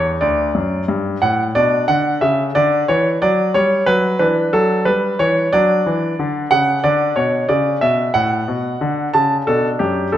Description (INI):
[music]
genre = classical-period piano sonatina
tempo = 91 BPM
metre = 4/4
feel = rubato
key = D major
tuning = A4 = 440 Hz
[part]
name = bright concert grand piano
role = solo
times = 0.0-10.2 s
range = D2 to A5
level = -14 LUFS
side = equal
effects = none
[sound]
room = moderate recital hall reverb, RT60 1.5 s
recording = none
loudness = -14 LUFS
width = side -11 dB against mid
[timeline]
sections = 0.0-10.2 A section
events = none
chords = 0.0 D; 1.6 Bm; 4.2 Em7; 5.5 D; 9.5 D6